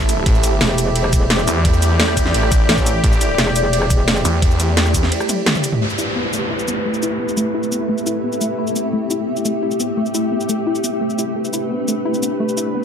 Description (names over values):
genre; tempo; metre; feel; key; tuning
dark technical drum and bass; 173 BPM; 4/4; straight; A minor; A4 = 440 Hz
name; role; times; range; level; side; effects
sweeping resonant pad; sustained chords; 0.0-12.8 s; A3 to B4; -24 LUFS; right 2 dB; chorus, sidechain pumping
snarling distorted saw bass; bass; 0.0-5.1 s; A1 to E2; -17 LUFS; equal; distortion, sidechain pumping
drum and bass drum kit; drums; 0.0-12.6 s; cabasa, hi-hat, ride cymbal, rim click, snare drum, toms; -20 LUFS; equal; none
electronic kick drum; drums; 0.0-5.0 s; none; -16 LUFS; equal; none
granular cloud pad; texture; 0.0-12.8 s; A3 to E5; -23 LUFS; left 1 dB; built-in reverb, sidechain pumping
metallic wobble bass; bass; 0.6-4.2 s; E1 to A1; -19 LUFS; equal; chorus
soft round pluck; arpeggios; 5.8-12.8 s; A3 to E4; -23 LUFS; left 3 dB; chorus, sidechain pumping, ping-pong delay
downlifter; sound effects; 5.8-8.6 s; none; -26 LUFS; equal; none
room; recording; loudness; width
light reverb, digital ambience; none; -15 LUFS; side -8 dB against mid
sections
0.0-5.8 A section; 5.8-12.8 B section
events
drop 0.0-5.8; break 5.1-5.8; drum fill 5.3-5.8; band accent 5.5; filter sweep on synth pluck 5.8-12.8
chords
0.0 Am